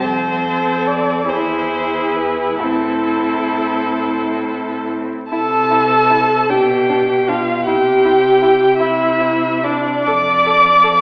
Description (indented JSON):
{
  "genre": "classical, slow romantic movement for string quartet",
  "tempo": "42-54 BPM (dotted quarters)",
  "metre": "6/8",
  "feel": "rubato",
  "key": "A minor, C major from 5.3 s",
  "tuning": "A4 = 437 Hz",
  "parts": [
    { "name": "warm violin", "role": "melody", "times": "0.0-11.0 s", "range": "A4 to D6", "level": "-20 LUFS", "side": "equal", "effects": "none" },
    { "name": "dark violin", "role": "second line", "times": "0.0-10.9 s", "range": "D4 to A4", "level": "-24 LUFS", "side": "equal", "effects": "none" },
    { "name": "clear viola", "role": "accompaniment", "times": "0.0-11.0 s", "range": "C4 to D5", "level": "-19 LUFS", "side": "equal", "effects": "none" },
    { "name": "rich cello", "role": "bass", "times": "0.0-11.0 s", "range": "E2 to C3", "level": "-27 LUFS", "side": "equal", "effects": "none" }
  ],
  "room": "wet recital hall reverb, RT60 1.5 s",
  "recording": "recorded in a church or concert hall, vinyl crackle, AM radio sound",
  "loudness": "-16 LUFS",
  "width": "mono",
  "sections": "0.0-5.3 A section; 5.3-11.0 B section",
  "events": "none",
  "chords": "0.0 F; 1.3 E; 2.6 Am; 5.3 N.C.; 6.5 G/B; 7.7 C; 10.1 F6",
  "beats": "| 0.04 1.30 | 2.63 4.02 | 5.33 6.50 | 7.67 8.81 | 10.06"
}